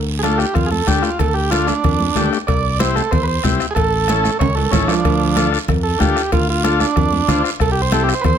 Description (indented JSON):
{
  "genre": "latin, cumbia",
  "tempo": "188 BPM",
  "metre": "4/4",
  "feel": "straight",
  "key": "D minor",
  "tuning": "A4 = 437 Hz",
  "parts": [
    { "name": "fingered electric bass", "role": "bass", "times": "0.0-8.4 s", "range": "A1 to F2", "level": "-20 LUFS", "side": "equal", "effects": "none" },
    { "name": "combo organ", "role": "melody", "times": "0.2-8.4 s", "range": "F3 to D5", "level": "-19 LUFS", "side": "right 4 dB", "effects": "slapback echo" },
    { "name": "combo organ", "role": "accompaniment", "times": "0.2-8.1 s", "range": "A3 to C5", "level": "-21 LUFS", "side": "left 8 dB", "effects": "none" },
    { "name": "bombo", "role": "percussion", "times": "0.2-8.4 s", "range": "none", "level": "-22 LUFS", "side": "left 3 dB", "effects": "none" },
    { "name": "congas", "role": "percussion", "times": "0.2-8.4 s", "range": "none", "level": "-24 LUFS", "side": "right 4 dB", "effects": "none" },
    { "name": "cowbell and timbales", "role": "percussion", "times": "0.2-8.4 s", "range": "none", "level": "-26 LUFS", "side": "right 8 dB", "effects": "none" },
    { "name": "guiro", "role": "percussion", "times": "0.2-8.4 s", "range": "none", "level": "-29 LUFS", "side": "right 9 dB", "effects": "none" }
  ],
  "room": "light reverb",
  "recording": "close, detailed microphones",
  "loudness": "-14 LUFS",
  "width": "side -8 dB against mid",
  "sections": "0.0-8.4 A section",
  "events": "transistor combo organ solo 0.0-8.4; drum fill 4.4-5.0",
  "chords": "0.0 Dm; 2.5 C; 3.8 A; 5.0 Dm; 7.6 C"
}